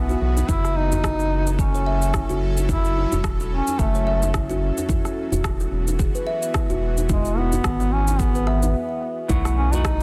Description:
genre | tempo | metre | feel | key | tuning
organic downtempo | 109 BPM | 4/4 | swing 57% on 16ths | F# dorian | A4 = 439 Hz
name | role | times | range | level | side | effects
warm duduk | melody | 0.0-10.0 s | G#3 to E4 | -28 LUFS | equal | vintage 12-bit sampler grit, delay
bowed-like drone | sustained chords | 0.0-10.0 s | E3 to B4 | -36 LUFS | equal | built-in reverb, sidechain pumping
kalimba | arpeggios | 0.0-9.8 s | E4 to E5 | -31 LUFS | equal | delay
round analog bass | bass | 0.0-10.0 s | E1 to B1 | -25 LUFS | equal | sidechain pumping
electronic cabasa and rim click | drums | 0.1-10.0 s | none | -34 LUFS | equal | soft clipping on snare
djembe | percussion | 0.1-10.0 s | none | -33 LUFS | equal | none
electronic kick drum | drums | 0.5-10.0 s | none | -27 LUFS | equal | none
semi-hollow electric guitar | accompaniment | 9.3-10.0 s | E3 to F#4 | -31 LUFS | equal | lush chorus, sidechain pumping
room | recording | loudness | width
light reverb, small room reverb | dense, heavily limited modern master | -22 LUFS | mono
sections
0.0-9.3 A section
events
stop 8.7-9.3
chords
0.5 F#m7; 4.9 Eadd9; 9.3 B7sus4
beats
| 0.49 1.04 1.59 2.14 | 2.69 3.24 3.79 4.34 | 4.89 5.44 5.99 6.54 | 7.09 7.64 8.20 8.74 | 9.30 9.85

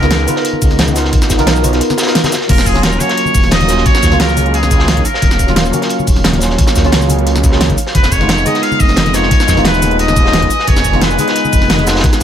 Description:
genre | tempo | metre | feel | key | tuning
liquid drum and bass | 176 BPM | 4/4 | straight | Eb minor | A4 = 441 Hz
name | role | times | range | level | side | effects
trumpet with straight mute | melody | 0.0-5.6, 7.9-12.2 s | Ab4 to F5 | -17 LUFS | left 1 dB | digital delay
tine electric piano | accompaniment | 0.0-12.2 s | Gb3 to Db5 | -17 LUFS | equal | wide subtle chorus, dub echo
ethereal airy pad | sustained chords | 0.0-12.2 s | Cb4 to Ab5 | -24 LUFS | right 1 dB | ensemble chorus, built-in reverb, phaser, sidechain pumping
swelling detuned saw bass | bass | 0.0-12.2 s | Eb1 to F2 | -16 LUFS | equal | none
pop drum kit | drums | 0.0-12.2 s | crash cymbal, hi-hat, shaker, snare drum | -17 LUFS | equal | none
congas | percussion | 0.0-12.1 s | none | -23 LUFS | left 4 dB | none
crunchy breakbeat drum kit | drums | 0.1-12.2 s | hi-hat, snare drum | -20 LUFS | equal | high-pass filter on hats, high-pass filter on snare, high-pass filter on room
electronic kick drum | drums | 0.6-12.2 s | none | -13 LUFS | equal | none
room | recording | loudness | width
light reverb, small room ambience | none | -9 LUFS | side -9 dB against mid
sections
0.0-2.5 A section; 2.5-12.2 A section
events
drop 0.0-2.5, 2.5-12.2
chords
0.0 Db13; 2.5 Ebm7; 7.8 Fm7b5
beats
0.11 0.45 0.79 | 1.13 1.47 1.81 2.15 | 2.49 2.83 3.17 3.52 | 3.86 4.20 4.54 4.88 | 5.22 5.56 5.90 6.24 | 6.58 6.92 7.27 7.61 | 7.95 8.29 8.63 8.97 | 9.31 9.65 9.99 10.33 | 10.68 11.02 11.36 11.70 | 12.04

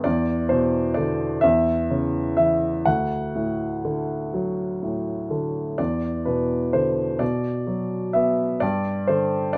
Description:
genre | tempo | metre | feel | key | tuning
classical, lyrical solo piano | 42 BPM (dotted quarters) | 6/8 | uneven beats, rubato | unclear | A4 = 440 Hz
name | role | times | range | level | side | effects
clear grand piano | solo | 0.0-9.6 s | D2 to F#5 | -23 LUFS | equal | none
room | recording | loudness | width
moderate studio reverb, RT60 0.6 s | none | -23 LUFS | mono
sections
0.0-9.6 A section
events
none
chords
0.1 E5; 1.4 C#m/E; 2.9 D; 5.8 E5; 7.2 Bm; 8.6 G5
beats
| 0.05 1.43 | 2.86 4.34 | 5.79 7.21 | 8.62

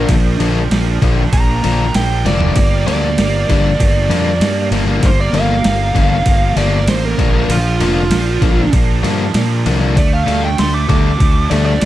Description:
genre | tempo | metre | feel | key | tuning
indie rock | 97 BPM | 4/4 | straight | G minor | A4 = 440 Hz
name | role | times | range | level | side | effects
biting lead guitar | melody | 0.0-11.9 s | F4 to D6 | -20 LUFS | right 2 dB | overdrive
phased analog pad | sustained chords | 0.0-11.9 s | D4 to Bb5 | -30 LUFS | right 2 dB | phaser, chorus
biting overdriven guitar | riff | 0.0-11.7 s | D3 to D4 | -19 LUFS | left 7 dB | none
thick fuzz guitar | riff | 0.0-11.9 s | F3 to D4 | -23 LUFS | right 9 dB | distortion, analog chorus, digital delay
fuzz fingered electric bass | bass | 0.0-11.9 s | F1 to Bb2 | -16 LUFS | equal | overdrive
boom bap sampler-style drum kit | drums | 0.1-11.9 s | kick drum, ride cymbal, snare drum, toms | -17 LUFS | equal | overdrive
room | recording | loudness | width
little or no reverb | dark, warm production, faint mains hum | -12 LUFS | side -14 dB against mid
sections
0.0-11.9 A section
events
lead electric guitar solo 0.0-11.9; drum fill 2.3-2.6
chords
0.0 Bb; 2.6 Gm; 7.2 Bbmaj7; 10.0 Dsus4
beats
| 0.09 0.71 1.32 1.94 | 2.56 3.18 3.79 4.41 | 5.03 5.65 6.27 6.88 | 7.50 8.12 8.74 9.36 | 9.97 10.59 11.21 11.82

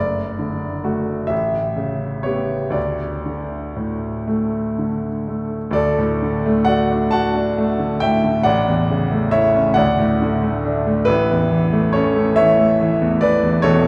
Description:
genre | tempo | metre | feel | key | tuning
classical, romantic nocturne for solo piano | 39-49 BPM (dotted quarters) | 6/8 | rubato | D major | A4 = 440 Hz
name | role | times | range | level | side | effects
clear grand piano | solo | 0.0-13.9 s | E1 to A5 | -19 LUFS | equal | none
room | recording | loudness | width
wet cathedral reverb, RT60 4.5 s | recorded in a church or concert hall | -19 LUFS | mono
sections
0.0-5.8 A section; 5.8-13.9 B section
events
none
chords
0.0 D/F#; 1.3 A9; 2.8 D5; 5.8 D; 8.5 A; 9.8 D; 11.1 A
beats
1.31 | 2.76 4.28 | 5.75 7.14 | 8.47 9.78 | 11.08 12.38 | 13.64

